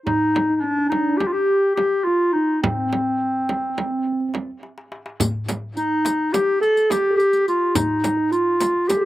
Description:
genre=Turkish makam ensemble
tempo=211 BPM (eighths)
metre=9/8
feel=straight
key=C makam huseyni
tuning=A4 = 441 Hz
part: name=warm clarinet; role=melody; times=0.1-9.1 s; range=C4 to A4-30c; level=-20 LUFS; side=left 1 dB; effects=slapback echo
part: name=mellow tine electric piano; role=second line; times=0.1-9.1 s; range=C4 to A4-30c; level=-23 LUFS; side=right 2 dB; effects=phaser, slapback echo
part: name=darbuka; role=percussion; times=0.1-9.0 s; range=none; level=-31 LUFS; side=left 1 dB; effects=none
part: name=frame drum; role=percussion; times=0.1-9.0 s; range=none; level=-26 LUFS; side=right 3 dB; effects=none
part: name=riq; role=percussion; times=5.2-9.0 s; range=none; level=-29 LUFS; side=left 4 dB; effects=none
room=light reverb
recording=recorded outdoors, with no room sound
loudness=-18 LUFS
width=side -15 dB against mid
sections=0.0-5.2 A section; 5.2-9.1 B section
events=drum fill 4.6-5.2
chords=none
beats=| 0.07 0.35 0.64 0.92 1.21 1.49 1.78 2.06 2.35 | 2.63 2.92 3.21 3.49 3.77 4.06 4.34 4.63 4.92 | 5.20 5.48 5.77 6.05 6.34 6.62 6.91 7.19 7.48 | 7.76 8.04 8.33 8.61 8.90

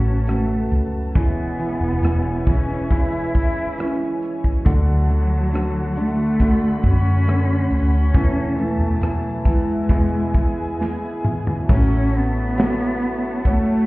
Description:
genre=pop ballad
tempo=68 BPM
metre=4/4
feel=straight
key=A major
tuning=A4 = 443 Hz
part: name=rich cello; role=melody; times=0.0-13.9 s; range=F#3 to E4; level=-23 LUFS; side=equal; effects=none
part: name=warm concert grand piano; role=accompaniment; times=0.0-13.9 s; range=D3 to C#5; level=-27 LUFS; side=right 2 dB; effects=none
part: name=warm chamber string section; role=sustained chords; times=0.0-13.9 s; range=E4 to B5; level=-32 LUFS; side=left 1 dB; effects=none
part: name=direct-recorded clean electric guitar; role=arpeggios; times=0.0-13.9 s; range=E2 to F#4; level=-29 LUFS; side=left 2 dB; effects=none
part: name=vintage muted fingered electric bass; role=bass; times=0.0-13.9 s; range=E1 to F#2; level=-20 LUFS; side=equal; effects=none
part: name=modern studio drum kit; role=drums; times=0.3-13.7 s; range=crash cymbal, hi-hat, kick drum, rim click, snare drum, toms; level=-19 LUFS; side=equal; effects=none
room=small room ambience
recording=heard muffled through a wall, stone room reverb, EQ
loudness=-17 LUFS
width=side -20 dB against mid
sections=0.0-11.7 A section; 11.7-13.9 B section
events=drum fill 10.8-11.7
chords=0.0 F#m; 1.2 C#m7/E; 4.7 D; 8.1 Esus4; 9.9 E; 11.7 A6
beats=0.28 | 1.16 2.03 2.91 3.79 | 4.66 5.54 6.41 7.28 | 8.15 9.02 9.90 10.80 | 11.70 12.58 13.46

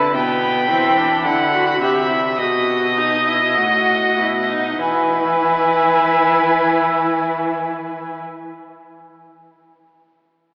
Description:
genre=classical, baroque-style fugue for string quartet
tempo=47-56 BPM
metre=4/4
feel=straight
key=unclear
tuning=A4 = 439 Hz
part: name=warm violin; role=melody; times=0.0-8.2 s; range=F#5 to D#6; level=-24 LUFS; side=equal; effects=none
part: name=rich violin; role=second line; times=0.0-8.2 s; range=B4 to G5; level=-21 LUFS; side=equal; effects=none
part: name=clear viola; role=accompaniment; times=0.0-8.2 s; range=B3 to G4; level=-24 LUFS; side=equal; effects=none
part: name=warm cello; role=bass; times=0.0-8.2 s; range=A2 to E3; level=-26 LUFS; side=equal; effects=none
room=wet church reverb, RT60 3.6 s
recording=worn, warbling old tape, cassette tape, warbly pitch drift, AM radio sound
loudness=-17 LUFS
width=mono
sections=0.0-4.8 A section; 4.8-9.9 B section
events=slowing down 0.0-4.8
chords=0.2 Em/B; 2.4 B7; 4.8 E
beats=| 0.16 1.25 2.39 3.57 | 4.81 6.08 7.35

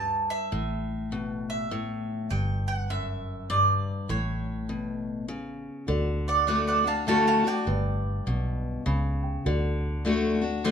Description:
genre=honky-tonk and classic country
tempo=101 BPM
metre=3/4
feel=swing 62% on 8ths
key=D major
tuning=A4 = 440 Hz
part: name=mandolin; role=melody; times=0.0-10.7 s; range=C5 to A5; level=-27 LUFS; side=right 4 dB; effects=none
part: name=picked steel-string acoustic guitar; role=accompaniment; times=0.0-10.7 s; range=F#2 to F#4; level=-29 LUFS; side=left 3 dB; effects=none
part: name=vintage muted fingered electric bass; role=bass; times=0.0-10.7 s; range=G1 to D2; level=-30 LUFS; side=equal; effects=none
part: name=dark upright piano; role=accompaniment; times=5.9-10.7 s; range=F#4 to B5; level=-36 LUFS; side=equal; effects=none
room=light reverb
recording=minimal, uncompressed stereo recording, lossy compression artefacts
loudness=-25 LUFS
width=side -7 dB against mid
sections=0.0-5.9 A section; 5.9-10.7 B section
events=mandolin solo 5.9-10.7; upright piano fill 8.6-9.5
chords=0.0 D5; 0.5 A5; 2.3 G5; 4.1 A; 5.9 D; 7.7 G; 9.5 D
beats=| 0.52 1.12 1.71 | 2.31 2.90 3.50 | 4.10 4.69 5.29 | 5.88 6.48 7.08 | 7.67 8.27 8.86 | 9.46 10.06 10.65

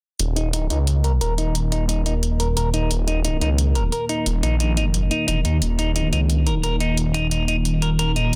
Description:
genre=dark technical drum and bass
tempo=177 BPM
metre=4/4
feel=straight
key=unclear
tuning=A4 = 441 Hz
part: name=dark analog pad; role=sustained chords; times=1.0-8.4 s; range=Eb3 to Bb4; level=-29 LUFS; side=equal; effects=chorus
part: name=phased detuned saw bass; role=bass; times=0.2-8.4 s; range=Eb1 to Eb2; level=-23 LUFS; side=equal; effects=phaser
part: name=electronic hi-hat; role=drums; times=0.2-8.4 s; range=none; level=-30 LUFS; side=equal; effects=none
part: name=clean electric guitar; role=arpeggios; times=0.4-8.3 s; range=Eb4 to Bb4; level=-28 LUFS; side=equal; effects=low-pass filter, digital delay
room=light reverb, digital ambience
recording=dense, heavily limited modern master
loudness=-21 LUFS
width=mono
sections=0.2-8.4 A section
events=filter sweep on analog synth pad 0.2-8.4; filter sweep on clean electric guitar 0.2-8.4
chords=0.2 Eb5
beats=| 0.20 0.53 0.87 1.21 | 1.55 1.89 2.23 2.57 | 2.91 3.25 3.58 3.92 | 4.26 4.60 4.94 5.28 | 5.62 5.96 6.30 6.63 | 6.97 7.31 7.65 7.99 | 8.33

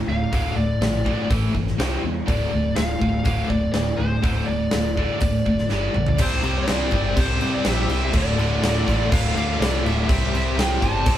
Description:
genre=hard rock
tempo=123 BPM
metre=4/4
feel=straight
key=unclear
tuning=A4 = 439 Hz
part: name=cranked stack guitar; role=riff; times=0.0-11.2 s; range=D2 to C4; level=-27 LUFS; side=left 4 dB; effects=overdrive, tremolo
part: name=heavy high-gain guitar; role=riff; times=0.0-11.2 s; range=D2 to C4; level=-28 LUFS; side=right 5 dB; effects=distortion
part: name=biting lead guitar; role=melody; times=0.1-11.2 s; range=C5 to A5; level=-27 LUFS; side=left 1 dB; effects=overdrive
part: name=picked electric bass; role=bass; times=0.1-11.2 s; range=D1 to C3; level=-25 LUFS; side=equal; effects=none
part: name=huge arena drum kit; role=drums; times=0.3-11.2 s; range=crash cymbal, hi-hat, kick drum, snare drum, toms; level=-24 LUFS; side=equal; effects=none
part: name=overdriven tonewheel organ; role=sustained chords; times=6.2-11.2 s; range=C4 to E5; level=-38 LUFS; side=equal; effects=none
part: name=heavy high-gain guitar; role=riff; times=6.2-11.2 s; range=D2 to C4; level=-30 LUFS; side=equal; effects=distortion
room=moderate small room reverb, RT60 0.6 s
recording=band playing live in one room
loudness=-19 LUFS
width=side -11 dB against mid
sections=0.0-6.2 A section; 6.2-11.2 B section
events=drum fill 5.7-6.2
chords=0.0 Dm; 1.3 A5; 1.8 C5; 2.3 Dm; 5.7 G5; 6.2 C5; 8.1 D5; 10.1 C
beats=| 0.32 0.81 1.30 1.79 | 2.28 2.77 3.26 3.75 | 4.24 4.73 5.21 5.70 | 6.19 6.68 7.17 7.66 | 8.14 8.63 9.12 9.61 | 10.09 10.58 11.07

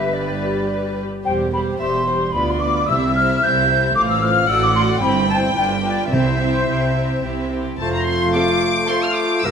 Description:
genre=quick classical-period movement for symphony orchestra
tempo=109 BPM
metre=3/4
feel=rubato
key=C major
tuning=A4 = 440 Hz
part: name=warm chamber violin section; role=melody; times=0.0-9.5 s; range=G4 to F6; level=-26 LUFS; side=left 4 dB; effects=none
part: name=bright flute section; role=second line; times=0.0-9.5 s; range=C5 to G6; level=-20 LUFS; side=left 1 dB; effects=none
part: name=warm chamber violin section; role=second line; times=0.0-9.0 s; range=A4 to G5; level=-26 LUFS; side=left 2 dB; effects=none
part: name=warm chamber viola section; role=accompaniment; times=0.0-9.0 s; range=G3 to A4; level=-25 LUFS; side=right 1 dB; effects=none
part: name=clear chamber double bass section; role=bass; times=0.0-9.5 s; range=E1 to D2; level=-26 LUFS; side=right 3 dB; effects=none
part: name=warm chamber cello section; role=bass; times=0.0-9.5 s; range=D2 to C3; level=-25 LUFS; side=right 3 dB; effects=none
part: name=timpani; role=percussion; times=2.9-6.9 s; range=C3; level=-27 LUFS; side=right 1 dB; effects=none
part: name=clear clarinet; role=second line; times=7.8-9.5 s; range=F4 to G4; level=-25 LUFS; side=left 1 dB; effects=none
part: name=warm oboe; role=second line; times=7.8-9.5 s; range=Bb4 to C5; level=-27 LUFS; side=equal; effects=none
part: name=mellow bassoon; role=accompaniment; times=7.8-9.5 s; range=A3 to Bb3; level=-25 LUFS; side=equal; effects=none
part: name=mellow French horn section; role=sustained chords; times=7.8-9.5 s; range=A3 to F4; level=-24 LUFS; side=left 1 dB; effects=none
room=moderate scoring stage reverb, RT60 1.9 s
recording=none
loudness=-16 LUFS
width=side -7 dB against mid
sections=0.0-7.8 A section; 7.8-9.5 B section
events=none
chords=0.0 G; 1.3 C/E; 2.4 Bdim/D; 2.9 C; 4.0 F/A; 4.5 D/A; 5.0 C/G; 5.6 G7; 6.1 C; 7.8 F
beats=0.14 0.70 | 1.26 1.81 2.36 | 2.90 3.43 3.96 | 4.49 5.03 5.57 | 6.12 6.69 7.25 | 7.81 8.36 8.90 | 9.45

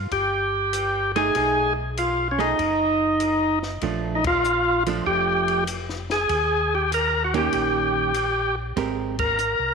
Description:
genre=soul jazz organ trio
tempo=97 BPM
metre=4/4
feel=swing 68% on 8ths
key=unclear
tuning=A4 = 440 Hz
part: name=mellow tonewheel organ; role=bass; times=0.0-9.7 s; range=F1 to Eb2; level=-31 LUFS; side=equal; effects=chorus vibrato, slow rotary speaker
part: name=percussive tonewheel organ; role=melody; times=0.1-9.7 s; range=Db4 to Bb4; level=-21 LUFS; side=equal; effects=slow rotary speaker, overdrive
part: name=compact cocktail drum kit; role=drums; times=0.1-9.6 s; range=hi-hat, kick drum, ride cymbal, snare drum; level=-35 LUFS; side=left 4 dB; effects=none
part: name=archtop guitar, miked and amplified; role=accompaniment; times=1.2-9.2 s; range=Eb3 to Bb4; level=-27 LUFS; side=right 9 dB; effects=none
room=wet echo chamber reverb, RT60 1.7 s, small room ambience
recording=1960s-style stereo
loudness=-20 LUFS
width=side -5 dB against mid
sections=0.0-9.7 A section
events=band accent 4.1-4.4, 9.1-9.4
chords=0.0 Cm (rootless); 1.3 B6; 3.8 Bbmaj7; 6.3 Eb7; 8.8 Abmaj9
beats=0.11 0.73 | 1.35 1.97 2.58 3.20 | 3.82 4.44 5.06 5.67 | 6.29 6.91 7.53 8.15 | 8.77 9.39

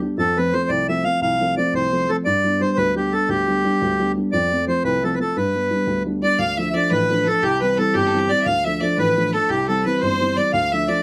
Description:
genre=celtic folk, Celtic jig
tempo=116 BPM (dotted quarters)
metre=6/8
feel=straight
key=G mixolydian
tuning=A4 = 439 Hz
part: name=dark upright piano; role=accompaniment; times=0.0-11.0 s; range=G1 to D4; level=-24 LUFS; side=equal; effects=none
part: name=accordion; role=melody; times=0.2-11.0 s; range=G4 to F5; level=-22 LUFS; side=equal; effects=none
part: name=bright fiddle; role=second line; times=6.2-11.0 s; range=G4 to F5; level=-29 LUFS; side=equal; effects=none
room=light reverb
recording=close, detailed microphones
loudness=-20 LUFS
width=mono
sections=0.0-6.4 A section; 6.4-11.0 B section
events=none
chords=0.2 F; 2.3 G; 4.3 F; 5.4 G; 6.4 Dm; 7.4 C; 8.5 Dm; 9.5 C; 10.5 Dm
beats=| 0.19 0.70 | 1.22 1.74 | 2.25 2.77 | 3.29 3.80 | 4.32 4.84 | 5.36 5.87 | 6.39 6.91 | 7.42 7.94 | 8.46 8.98 | 9.49 10.01 | 10.53

